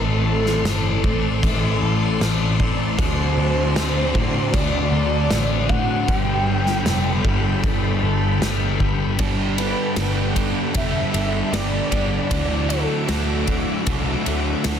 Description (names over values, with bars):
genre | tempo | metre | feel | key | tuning
rock, shoegaze and dream pop | 77 BPM | 4/4 | straight | unclear | A4 = 439 Hz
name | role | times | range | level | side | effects
warm velvety synth lead | melody | 0.0-13.9 s | A4 to G5 | -27 LUFS | right 1 dB | chorus, slapback echo
string machine, violins | sustained chords | 0.0-14.8 s | F#4 to D6 | -30 LUFS | equal | ensemble chorus
electric guitar through a small old amp | arpeggios | 0.0-14.8 s | E3 to A4 | -32 LUFS | right 3 dB | wide subtle chorus, slapback echo
overdriven semi-hollow guitar | riff | 0.0-14.8 s | G2 to A4 | -26 LUFS | right 9 dB | reverse reverb
thick fuzz guitar | riff | 0.0-14.8 s | G2 to D4 | -25 LUFS | left 9 dB | distortion, lush chorus
vintage muted picked electric bass | bass | 0.0-14.8 s | F1 to A2 | -24 LUFS | equal | none
loose indie drum kit | drums | 0.5-14.8 s | crash cymbal, kick drum, ride cymbal, snare drum | -24 LUFS | left 1 dB | none
room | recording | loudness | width
light reverb, small room ambience | dense, heavily limited modern master | -18 LUFS | side -8 dB against mid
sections
0.0-9.2 A section; 9.2-14.8 B section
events
none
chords
0.0 Am; 3.0 D7; 6.1 Gadd9; 12.3 Dadd9